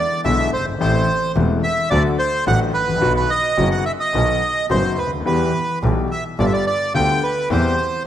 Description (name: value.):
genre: tango.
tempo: 108 BPM.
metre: 4/4.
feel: rubato.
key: E minor.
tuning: A4 = 440 Hz.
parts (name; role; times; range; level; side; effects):
bandoneon; melody; 0.0-8.0 s; B4 to G5; -20 LUFS; right 2 dB; none.
warm concert grand piano; accompaniment; 0.2-7.7 s; E1 to G4; -21 LUFS; left 4 dB; none.
clear double bass; bass; 0.2-7.7 s; E1 to E2; -23 LUFS; right 1 dB; none.
room: moderate scoring stage reverb, RT60 1.8 s.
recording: none.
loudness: -16 LUFS.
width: side -10 dB against mid.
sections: 0.0-8.1 A section.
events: none.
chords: 0.0 E7; 0.8 Am; 1.9 D; 3.0 B; 5.3 Em; 6.4 G7; 7.5 C/E.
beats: 0.25 | 0.80 1.36 1.91 2.47 | 3.02 3.58 4.14 4.70 | 5.26 5.83 6.39 6.95 | 7.51.